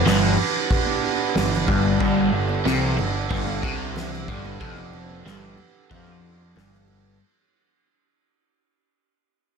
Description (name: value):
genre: psychedelic rock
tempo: 92 BPM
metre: 4/4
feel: straight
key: G mixolydian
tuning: A4 = 439 Hz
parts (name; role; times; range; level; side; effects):
- hand-pumped harmonium; sustained chords; 0.0-7.2 s; B3 to B4; -28 LUFS; right 9 dB; none
- crunchy overdriven guitar; riff; 0.0-7.2 s; F2 to F3; -23 LUFS; left 1 dB; phaser
- growling picked electric bass; bass; 0.1-7.2 s; F1 to F2; -29 LUFS; equal; overdrive
- soft-mallet drum kit; drums; 0.1-7.0 s; crash cymbal, kick drum, ride cymbal, snare drum; -24 LUFS; right 1 dB; none
- congas; percussion; 0.4-7.2 s; none; -38 LUFS; left 3 dB; none
room: studio reverb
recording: none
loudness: -20 LUFS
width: side -6 dB against mid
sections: 0.0-7.2 A section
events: fade-out 0.0-7.2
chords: 0.0 G